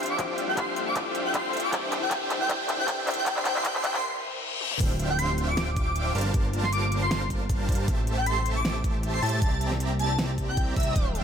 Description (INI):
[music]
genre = future bass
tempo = 156 BPM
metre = 4/4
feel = swing 53% on 16ths, half-time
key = unclear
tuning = A4 = 440 Hz
[part]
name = dark grand piano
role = accompaniment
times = 0.0-4.8 s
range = E3 to G4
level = -36 LUFS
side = left 7 dB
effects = sidechain pumping, ping-pong delay
[part]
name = airy breathy pad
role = sustained chords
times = 0.0-11.2 s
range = C3 to C5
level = -39 LUFS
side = equal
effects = chorus, sidechain pumping
[part]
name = supersaw chords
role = riff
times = 0.0-11.2 s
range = G3 to Bb5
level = -32 LUFS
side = right 1 dB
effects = sidechain pumping
[part]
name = pop drum kit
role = drums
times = 0.0-11.2 s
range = crash cymbal, handclaps, hi-hat, snare drum, toms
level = -32 LUFS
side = equal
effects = none
[part]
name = riser and reverse cymbal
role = sound effects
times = 0.2-4.8 s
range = none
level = -34 LUFS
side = left 3 dB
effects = none
[part]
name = airy dreamy lead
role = melody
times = 0.1-11.0 s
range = E5 to D6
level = -30 LUFS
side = equal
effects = chorus, sidechain pumping, ping-pong delay
[part]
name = electronic kick drum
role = drums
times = 0.2-11.0 s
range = none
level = -27 LUFS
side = equal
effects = none
[part]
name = fat analog bass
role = bass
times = 4.8-11.2 s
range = D1 to A2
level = -28 LUFS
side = equal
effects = sidechain pumping
[sound]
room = light reverb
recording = high-pass filter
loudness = -24 LUFS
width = side -7 dB against mid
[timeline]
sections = 0.0-4.8 A section; 4.8-11.2 B section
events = build-up 0.0-4.8; drum fill 0.0-4.0, 4.6; filter sweep on analog synth pad 0.0-4.8; riser 0.2-4.0; break 4.0-4.8; reverse cymbal 4.0-4.8; drop 4.8-11.2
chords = 0.0 Gm11; 1.7 Am7; 3.3 C7; 4.8 Dm11; 6.2 Gm11; 7.9 Am7; 9.4 C7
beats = | 0.19 0.57 0.96 1.34 | 1.73 2.11 2.50 2.88 | 3.27 3.65 4.04 4.42 | 4.80 5.19 5.57 5.96 | 6.34 6.73 7.11 7.50 | 7.88 8.27 8.65 9.04 | 9.42 9.80 10.19 10.57 | 10.96